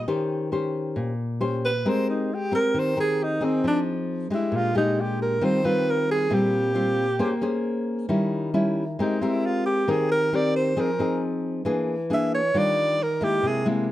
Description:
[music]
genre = bossa nova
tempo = 135 BPM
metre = 4/4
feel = straight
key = Eb major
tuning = A4 = 442 Hz
[part]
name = breathy alto saxophone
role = melody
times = 0.0-13.9 s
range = C4 to E5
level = -24 LUFS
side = right 1 dB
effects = plate reverb
[part]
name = nylon-string guitar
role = accompaniment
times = 0.0-13.9 s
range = Bb2 to C5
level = -24 LUFS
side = left 1 dB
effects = none
[sound]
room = light reverb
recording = none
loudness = -22 LUFS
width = side -14 dB against mid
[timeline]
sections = 0.0-13.9 A section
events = alto saxophone solo 0.0-13.9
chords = 0.1 Eb6; 1.9 Abmaj9; 3.6 Fm7; 4.5 Bb6; 5.4 Eb69; 7.2 Bbm9; 8.1 Eb7b9; 9.0 Abmaj9; 10.8 Fm7; 11.7 E7#11; 12.5 Ebmaj9

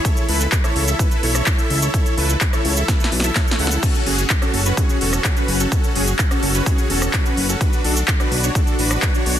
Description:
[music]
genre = EDM, festival progressive house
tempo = 127 BPM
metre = 4/4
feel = straight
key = F# minor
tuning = A4 = 442 Hz
[part]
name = dense compressed supersaw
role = riff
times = 0.0-9.4 s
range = C#4 to F#5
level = -22 LUFS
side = equal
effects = sidechain pumping, tape echo
[part]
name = big-room dance drum kit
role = drums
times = 0.0-9.4 s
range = crash cymbal, handclaps, hi-hat, rim click, shaker, snare drum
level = -22 LUFS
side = equal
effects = none
[part]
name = electronic kick drum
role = drums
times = 0.0-9.1 s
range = none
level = -19 LUFS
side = equal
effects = none
[part]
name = fat analog bass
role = bass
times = 0.3-9.4 s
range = E1 to C#2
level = -20 LUFS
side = equal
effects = sidechain pumping
[sound]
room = little or no reverb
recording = dense, heavily limited modern master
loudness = -16 LUFS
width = side -10 dB against mid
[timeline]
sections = 0.0-9.4 A section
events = drum fill 2.9-3.8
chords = 0.0 A; 3.8 F#m; 7.6 Bm

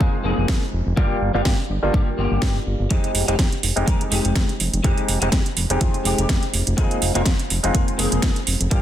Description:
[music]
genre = filtered disco house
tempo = 124 BPM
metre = 4/4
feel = swing 55% on 16ths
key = unclear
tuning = A4 = 445 Hz
[part]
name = overdriven clav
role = accompaniment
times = 0.0-8.8 s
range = G3 to G4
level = -26 LUFS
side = equal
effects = phaser, sidechain pumping, low-pass filter
[part]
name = electric guitar at the edge of break-up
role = riff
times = 0.0-8.8 s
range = Ab3 to Bb4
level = -28 LUFS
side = left 4 dB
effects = ensemble chorus, sidechain pumping, low-pass filter
[part]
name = fat analog bass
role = bass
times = 0.0-8.8 s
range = F1 to G2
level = -23 LUFS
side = equal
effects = sidechain pumping, low-pass filter
[part]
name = electronic kick drum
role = drums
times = 0.0-8.8 s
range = none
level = -20 LUFS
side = equal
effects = overdrive, studio reverb
[part]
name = house drum kit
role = drums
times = 0.5-8.8 s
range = hi-hat, snare drum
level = -24 LUFS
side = right 2 dB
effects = studio reverb, sidechain pumping on hats
[sound]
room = little or no reverb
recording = dense, heavily limited modern master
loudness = -18 LUFS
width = side -11 dB against mid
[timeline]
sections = 0.0-8.8 A section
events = none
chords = 0.0 Bb7sus4/F; 1.0 Gm7; 2.9 Fm9; 6.8 Bb7sus4/F

